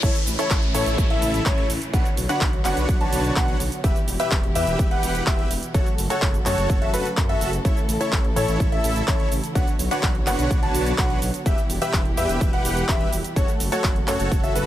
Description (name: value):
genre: EDM, festival progressive house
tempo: 126 BPM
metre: 4/4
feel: straight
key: B minor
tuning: A4 = 440 Hz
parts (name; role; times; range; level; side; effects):
- dark studio string section; sustained chords; 0.0-14.7 s; A2 to C#5; -30 LUFS; right 1 dB; sidechain pumping
- dark baby grand piano; arpeggios; 0.0-14.7 s; B4 to A5; -29 LUFS; left 2 dB; sidechain pumping, dub echo
- dense compressed supersaw; riff; 0.0-14.7 s; D4 to A5; -27 LUFS; equal; sidechain pumping, dub echo
- wide detuned saw bass; bass; 0.0-14.7 s; E1 to A2; -28 LUFS; equal; chorus, sidechain pumping
- big-room dance drum kit; drums; 0.0-14.7 s; crash cymbal, handclaps, hi-hat, shaker; -29 LUFS; equal; high-pass filter on snare, high-pass filter on hats, high-pass filter on cymbals, high-pass filter on perc, high-pass filter on room
- electronic kick drum; drums; 0.0-14.4 s; none; -22 LUFS; equal; none
- reverse cymbal and downlifter; sound effects; 0.0-3.8 s; none; -32 LUFS; left 1 dB; none
room: digital ambience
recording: none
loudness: -19 LUFS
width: side -13 dB against mid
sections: 0.0-14.7 A section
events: drop 0.0-14.7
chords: 0.0 A; 1.9 Bmadd9; 3.8 Em; 5.7 F#m; 7.7 A; 9.6 Bmadd9; 11.5 Em; 13.4 F#m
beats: | 0.03 0.51 0.98 1.46 | 1.94 2.41 2.89 3.36 | 3.84 4.32 4.79 5.27 | 5.75 6.22 6.70 7.17 | 7.65 8.13 8.60 9.08 | 9.55 10.03 10.51 10.98 | 11.46 11.94 12.41 12.89 | 13.36 13.84 14.32